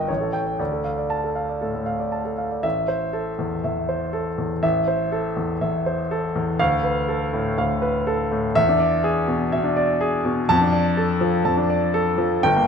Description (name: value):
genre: classical, virtuoso piano study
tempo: 122 BPM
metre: 4/4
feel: rubato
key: A minor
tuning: A4 = 440 Hz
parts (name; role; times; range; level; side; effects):
- warm concert grand piano; solo; 0.0-12.7 s; G1 to A5; -20 LUFS; equal; none
room: wet recital hall reverb, RT60 1.6 s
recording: nothing above 11.0 kHz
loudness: -20 LUFS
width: side -6 dB against mid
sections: 0.0-2.6 A section; 2.6-12.7 B section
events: none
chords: 0.1 A7; 0.6 Dm; 2.6 Am; 6.6 Bm7b5/D; 8.5 E7; 10.5 Dm/F